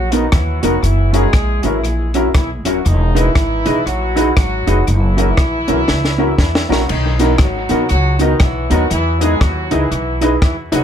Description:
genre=ska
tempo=119 BPM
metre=4/4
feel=swing 60% on 8ths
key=B major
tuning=A4 = 440 Hz
part: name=warm horn section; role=melody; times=0.0-10.8 s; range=D#3 to G#4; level=-20 LUFS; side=equal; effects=tape echo
part: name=upright bass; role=bass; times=0.0-10.8 s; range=D#1 to E2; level=-17 LUFS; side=equal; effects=none
part: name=mellow electric guitar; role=accompaniment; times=0.1-10.8 s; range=B3 to E5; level=-22 LUFS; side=right 3 dB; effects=tape echo
part: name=warm upright piano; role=stabs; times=0.1-10.8 s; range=B3 to B4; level=-20 LUFS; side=left 2 dB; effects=tape echo
part: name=compact cocktail drum kit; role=drums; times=0.1-10.8 s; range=crash cymbal, hi-hat, kick drum, rim click, snare drum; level=-16 LUFS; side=equal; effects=tape echo
room=light reverb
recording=none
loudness=-12 LUFS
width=side -9 dB against mid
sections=0.0-6.9 A section; 6.9-10.8 A section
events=drum fill 5.9-6.9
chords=0.0 Bmaj7; 0.8 F#7; 2.9 Emaj7; 4.9 F#7; 6.9 Bmaj7; 8.9 Emaj7

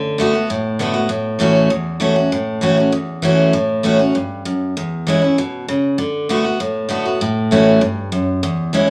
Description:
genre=rock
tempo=196 BPM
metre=4/4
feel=straight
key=A mixolydian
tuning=A4 = 440 Hz
part: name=picked steel-string acoustic guitar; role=solo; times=0.0-8.9 s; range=E2 to F#4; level=-17 LUFS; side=equal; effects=none
room=moderate large studio reverb, RT60 0.9 s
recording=none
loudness=-17 LUFS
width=mono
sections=0.0-8.9 A section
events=none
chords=0.0 D6; 1.1 A6; 4.8 E5; 6.0 D6; 7.2 A6

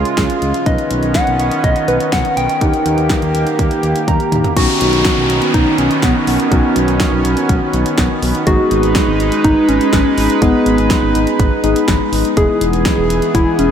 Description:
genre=synth-pop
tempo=123 BPM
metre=4/4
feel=straight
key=unclear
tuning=A4 = 441 Hz
part: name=warm analog keys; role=accompaniment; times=0.0-13.7 s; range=G#3 to A#5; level=-20 LUFS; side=left 1 dB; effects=chorus
part: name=chorused pulse-width pad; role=sustained chords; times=0.0-13.7 s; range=C#3 to B4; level=-19 LUFS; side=right 1 dB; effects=none
part: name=smooth gliding synth bass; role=bass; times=0.0-13.7 s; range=E1 to D#2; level=-19 LUFS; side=equal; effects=none
part: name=pop drum kit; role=drums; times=0.1-13.7 s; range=crash cymbal, hi-hat, kick drum, snare drum, toms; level=-18 LUFS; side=equal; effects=none
part: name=soft struck synth lead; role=melody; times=0.7-13.7 s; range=B3 to G5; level=-17 LUFS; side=equal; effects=chorus, tremolo, ping-pong delay
part: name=downlifter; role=sound effects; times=4.6-8.5 s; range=none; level=-23 LUFS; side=equal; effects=none
room=wet huge ambient reverb, RT60 8.5 s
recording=dreamy mix soaked in reverb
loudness=-12 LUFS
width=side -8 dB against mid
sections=0.0-4.6 A section; 4.6-13.7 B section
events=synth keys fill 3.8-4.6; drum fill 4.1-4.6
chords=0.0 C#; 0.7 Badd9; 2.6 D#; 4.6 Badd9; 8.5 G#m; 12.4 E

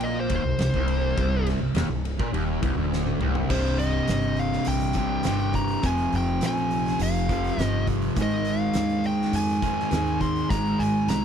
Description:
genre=stoner and doom metal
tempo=103 BPM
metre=4/4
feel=straight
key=C minor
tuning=A4 = 441 Hz
part: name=fuzz lead guitar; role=melody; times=0.0-11.2 s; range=C5 to C6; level=-29 LUFS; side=equal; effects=distortion, tape echo
part: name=fuzz guitar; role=riff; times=0.0-11.2 s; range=C2 to Ab3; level=-25 LUFS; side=equal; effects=distortion
part: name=upright bass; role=bass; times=0.0-11.2 s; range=C1 to F2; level=-28 LUFS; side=equal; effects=overdrive
part: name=oversized low-tuned drum kit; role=drums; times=0.0-11.2 s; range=crash cymbal, hi-hat, kick drum, ride cymbal, snare drum, toms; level=-31 LUFS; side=equal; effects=none
room=small room reverb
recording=none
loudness=-22 LUFS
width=side -8 dB against mid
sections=0.0-3.5 A section; 3.5-11.2 B section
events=lead electric guitar solo 0.0-3.5; drum fill 2.9-3.5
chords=0.0 Cm; 5.8 Fm; 8.2 Ab5

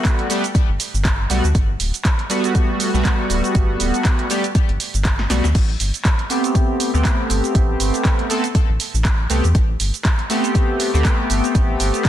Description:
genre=deep house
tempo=120 BPM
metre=4/4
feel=swing 56% on 16ths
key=A dorian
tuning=A4 = 440 Hz
part: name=chorused polysynth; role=stabs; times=0.0-12.1 s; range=G3 to A4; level=-21 LUFS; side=equal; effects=sidechain pumping, ping-pong delay
part: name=electronic kick drum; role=drums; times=0.0-12.1 s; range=none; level=-17 LUFS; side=equal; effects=overdrive
part: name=punchy analog drum machine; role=drums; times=0.0-12.1 s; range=crash cymbal, handclaps, hi-hat, shaker, snare drum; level=-24 LUFS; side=right 2 dB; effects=none
part: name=sub bass with octave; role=bass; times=0.7-11.9 s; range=D1 to E2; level=-20 LUFS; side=equal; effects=sidechain pumping
room=digital ambience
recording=dense, heavily limited modern master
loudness=-16 LUFS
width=side -12 dB against mid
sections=0.0-12.1 A section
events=drum fill 5.2-5.5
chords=0.0 Gmaj9; 5.5 Am9

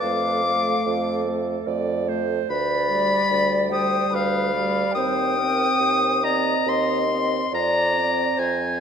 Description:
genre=classical, slow romantic movement for wind quintet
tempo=72 BPM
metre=3/4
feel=uneven beats, rubato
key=C minor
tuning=A4 = 439 Hz
part: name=mellow hollow silver concert flute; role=melody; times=0.0-8.8 s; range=C5 to B5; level=-27 LUFS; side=left 7 dB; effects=none
part: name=bright oboe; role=second line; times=0.0-8.8 s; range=F5 to Eb6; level=-23 LUFS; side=left 2 dB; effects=none
part: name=mellow French horn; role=accompaniment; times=0.0-8.8 s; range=G3 to C4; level=-29 LUFS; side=right 2 dB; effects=none
part: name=warm clarinet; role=accompaniment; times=0.0-8.8 s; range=A4 to Eb5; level=-28 LUFS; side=right 7 dB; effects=none
part: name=dark bassoon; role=bass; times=0.0-8.8 s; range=D2 to F2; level=-26 LUFS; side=right 3 dB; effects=none
room=wet concert hall reverb, RT60 2.4 s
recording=none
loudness=-19 LUFS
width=side -7 dB against mid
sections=0.0-8.8 A section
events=none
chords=0.0 Dm/F; 2.5 G7/D; 5.0 Cm/Eb; 7.5 Dm7b5/F

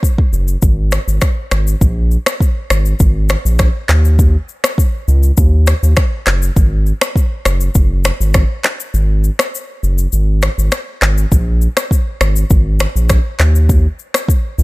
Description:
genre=afrobeats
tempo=101 BPM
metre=4/4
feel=straight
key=unclear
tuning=A4 = 438 Hz
part: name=afro-pop drum kit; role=drums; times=0.0-14.6 s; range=finger snaps, handclaps, kick drum, rim click, shaker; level=-14 LUFS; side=equal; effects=none
part: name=round analog bass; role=bass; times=0.3-14.6 s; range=Gb1 to Eb2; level=-12 LUFS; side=equal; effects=none
room=digital ambience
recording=none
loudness=-11 LUFS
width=side -21 dB against mid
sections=0.0-1.8 A section; 1.8-14.6 B section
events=kick muted 8.9-11.3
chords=none

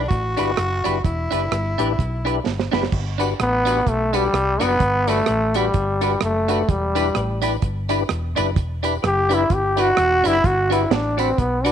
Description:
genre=ska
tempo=128 BPM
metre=4/4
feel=swing 58% on 8ths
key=G major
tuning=A4 = 439 Hz
part: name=growling tenor saxophone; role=melody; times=0.0-2.4 s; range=E4 to F#4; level=-25 LUFS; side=equal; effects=none
part: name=percussive tonewheel organ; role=stabs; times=0.0-11.7 s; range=D4 to B4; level=-26 LUFS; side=left 12 dB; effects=chorus vibrato, slow rotary speaker, tape echo
part: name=hollow-body short-scale fingered electric bass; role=bass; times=0.0-11.7 s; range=E1 to C2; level=-25 LUFS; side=equal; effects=none
part: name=deep reggae drum kit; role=drums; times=0.1-11.7 s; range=crash cymbal, hi-hat, kick drum, rim click, snare drum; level=-24 LUFS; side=right 4 dB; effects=none
part: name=clean electric guitar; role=accompaniment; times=0.4-11.7 s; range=D4 to B4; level=-27 LUFS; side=right 13 dB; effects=none
part: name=tambourine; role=percussion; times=3.2-11.7 s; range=none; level=-40 LUFS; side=left 14 dB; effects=tape echo
part: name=growling trombone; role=melody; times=3.4-11.7 s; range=G3 to G4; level=-19 LUFS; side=equal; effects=none
room=light reverb, small room ambience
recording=1960s-style stereo with parts hard left and right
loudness=-18 LUFS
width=side -9 dB against mid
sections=0.0-2.9 A section; 2.9-11.7 B section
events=drum fill 2.5-2.9; trombone solo 2.9-11.7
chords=0.0 Em7; 2.9 Gmaj7; 6.7 Em7; 10.4 Gmaj7

